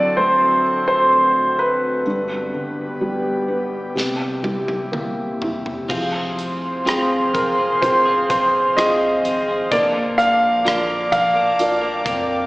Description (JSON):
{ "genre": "pop ballad", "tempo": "63 BPM", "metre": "4/4", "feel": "straight", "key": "unclear", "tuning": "A4 = 440 Hz", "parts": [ { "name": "clear grand piano", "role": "melody", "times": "0.0-12.5 s", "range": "Bb4 to F5", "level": "-17 LUFS", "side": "equal", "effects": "slapback echo" }, { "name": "felt-muted upright piano", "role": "accompaniment", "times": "0.0-12.5 s", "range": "D2 to D5", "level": "-25 LUFS", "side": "equal", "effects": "none" }, { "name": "airy breathy pad", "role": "sustained chords", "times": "0.0-12.5 s", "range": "Bb2 to D6", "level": "-24 LUFS", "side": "equal", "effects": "chorus" }, { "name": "modern studio drum kit", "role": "drums", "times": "4.0-12.3 s", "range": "crash cymbal, hi-hat, kick drum, rim click, snare drum, toms", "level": "-27 LUFS", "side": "equal", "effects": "none" }, { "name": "twelve-string electric guitar", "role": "arpeggios", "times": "5.9-12.5 s", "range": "Bb2 to Bb4", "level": "-25 LUFS", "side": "left 1 dB", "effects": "lush chorus, slapback echo, digital delay" }, { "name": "saturated sub bass", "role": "bass", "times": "5.9-12.5 s", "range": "F1 to F2", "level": "-37 LUFS", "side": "equal", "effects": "none" } ], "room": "wet plate reverb, RT60 2.8 s", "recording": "live gig heard through the venue's PA, recital hall reverb, small speaker sound", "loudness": "-16 LUFS", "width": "side -21 dB against mid", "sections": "0.0-5.9 A section; 5.9-12.5 B section", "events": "drum fill 4.0-5.9", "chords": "0.0 D7; 2.0 G; 4.0 C7; 5.9 Fm; 9.7 Bb" }